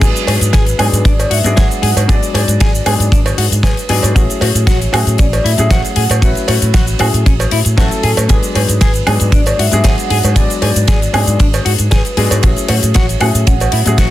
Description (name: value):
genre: nu-disco, nu disco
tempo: 116 BPM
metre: 4/4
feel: straight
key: unclear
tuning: A4 = 440 Hz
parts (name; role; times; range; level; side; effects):
- vibraphone with soft mallets; melody; 0.0-14.1 s; A4 to F#5; -22 LUFS; right 1 dB; none
- warm baby grand piano; accompaniment; 0.0-14.1 s; F#3 to D5; -20 LUFS; left 3 dB; sidechain pumping
- semi-hollow electric guitar; riff; 0.0-14.1 s; C#4 to G#4; -23 LUFS; left 4 dB; lush chorus
- fingered electric bass with an envelope filter; bass; 0.0-14.1 s; G#1 to A2; -15 LUFS; equal; none
- damped 70s drum kit; drums; 0.0-14.1 s; cabasa, crash cymbal, hi-hat, ride cymbal, snare drum, woodblock; -18 LUFS; equal; none
- kick drum; drums; 0.0-14.1 s; none; -13 LUFS; equal; soft clipping on snare
- cowbell; percussion; 0.3-14.1 s; none; -24 LUFS; right 2 dB; none
room: small room ambience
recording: dense, heavily limited modern master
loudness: -10 LUFS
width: side -14 dB against mid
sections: 0.0-14.1 A section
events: none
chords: 0.0 G#m7b5; 4.2 F#m7/A; 8.3 G#m7b5; 12.4 F#m7/A